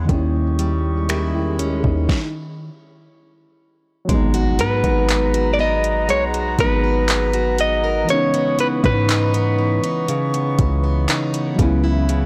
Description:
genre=contemporary R&B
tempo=60 BPM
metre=4/4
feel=straight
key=G# minor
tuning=A4 = 440 Hz
part: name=muted felt-like synth keys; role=accompaniment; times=0.0-12.3 s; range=D#3 to A#4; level=-27 LUFS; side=equal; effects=chorus
part: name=warm woodwind section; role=sustained chords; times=0.0-12.3 s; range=B3 to C#6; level=-32 LUFS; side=equal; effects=none
part: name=picked plugged-in steel-string acoustic guitar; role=arpeggios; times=0.0-12.3 s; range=C#3 to A#4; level=-27 LUFS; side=equal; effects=tape echo
part: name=warm 808-style bass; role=bass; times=0.0-12.3 s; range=G#1 to G#2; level=-23 LUFS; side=equal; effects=none
part: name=swell and impact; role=sound effects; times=1.0-8.1 s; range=none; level=-35 LUFS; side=equal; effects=none
part: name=smooth R&B drum kit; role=drums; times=0.1-12.3 s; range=finger snaps, handclaps, hi-hat, kick drum, snare drum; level=-24 LUFS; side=equal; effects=soft clipping on snare
part: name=direct-recorded clean electric guitar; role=melody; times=4.6-11.6 s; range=B4 to D#5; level=-23 LUFS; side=equal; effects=spring reverb, tape echo
room=digital ambience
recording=blown-out, overdriven recording, overdrive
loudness=-19 LUFS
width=mono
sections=0.0-4.1 A section; 4.1-12.3 B section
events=stop 2.1-4.1; impact 4.1-8.1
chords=0.1 D#7b9; 4.1 G#m9; 8.1 C#m9; 11.6 F#9sus4/C#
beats=| 0.09 1.09 2.09 3.09 | 4.09 5.09 6.09 7.09 | 8.09 9.09 10.09 11.09 | 12.09

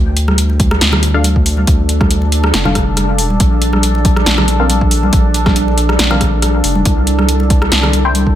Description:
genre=deep dubstep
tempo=139 BPM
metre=4/4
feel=swing 54% on 16ths, half-time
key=unclear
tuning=A4 = 441 Hz
part: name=deep dark ambient pad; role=sustained chords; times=0.4-8.4 s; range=D4 to A4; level=-19 LUFS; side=equal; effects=chorus, built-in reverb
part: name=saturated sub bass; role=bass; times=0.0-8.4 s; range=F1 to D2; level=-14 LUFS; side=equal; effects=none
part: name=deep house drum kit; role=drums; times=0.2-8.2 s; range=hi-hat, rim click, snare drum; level=-16 LUFS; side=equal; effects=overdrive
part: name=congas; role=percussion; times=0.3-8.2 s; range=none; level=-20 LUFS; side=equal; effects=dub echo
part: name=electronic kick drum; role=drums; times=0.6-8.3 s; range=none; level=-14 LUFS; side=equal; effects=overdrive
part: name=filtered dub chord stab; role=stabs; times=1.1-8.1 s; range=C4 to G5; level=-22 LUFS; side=left 4 dB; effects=phaser, dub echo
room=light reverb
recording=none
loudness=-10 LUFS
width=side -11 dB against mid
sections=0.0-8.4 A section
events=none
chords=0.0 Dm; 3.4 Bb5; 6.9 N.C.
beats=0.38 0.81 1.24 | 1.68 2.11 2.54 2.97 | 3.40 3.83 4.26 4.70 | 5.13 5.56 5.99 6.42 | 6.86 7.29 7.72 8.15

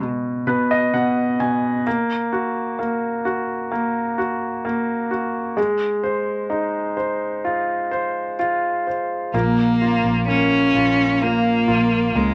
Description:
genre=pop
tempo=64 BPM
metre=4/4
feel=straight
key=unclear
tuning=A4 = 440 Hz
part: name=clear cello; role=melody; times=0.0, 9.3-12.3 s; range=Ab3 to Db4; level=-20 LUFS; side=equal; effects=none
part: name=clear concert grand piano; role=accompaniment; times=0.0-12.3 s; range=Cb3 to Ab5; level=-23 LUFS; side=equal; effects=none
part: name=fingerpicked steel-string acoustic guitar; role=arpeggios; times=9.3-12.3 s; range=Bb2 to F4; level=-30 LUFS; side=equal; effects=none
part: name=vintage muted fingered electric bass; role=bass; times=9.3-12.3 s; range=Bb1 to Db2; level=-27 LUFS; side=equal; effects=none
room=moderate club reverb, RT60 0.5 s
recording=none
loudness=-21 LUFS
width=mono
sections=0.0-12.3 A section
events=grand piano fill 0.0-1.9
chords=0.0 N.C.; 1.9 Gb/Bb; 5.6 Ab6; 9.3 Bbm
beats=0.01 0.94 | 1.86 2.79 3.72 4.64 | 5.58 6.51 7.45 8.39 | 9.34 10.29 11.23 12.16

